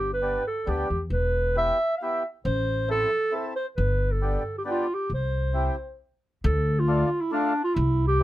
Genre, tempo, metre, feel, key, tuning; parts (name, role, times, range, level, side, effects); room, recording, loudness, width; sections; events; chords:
alpine folk, alpine dance band; 135 BPM; 3/4; straight; A4 = 440 Hz
dark clarinet; melody; 0.0-8.2 s; D4 to F5; -26 LUFS; right 1 dB
upright bass; bass; 0.0-8.2 s; E1 to E2; -25 LUFS; equal
mellow accordion; accompaniment; 0.2-8.2 s; A3 to A4; -30 LUFS; left 1 dB
little or no reverb; close, detailed microphones; -23 LUFS; side -15 dB against mid
0.0-6.4 A section; 6.4-8.2 A section
stop 6.0-6.4
0.0 G; 1.1 Em; 2.5 Am; 3.8 G; 5.1 C; 6.4 Dm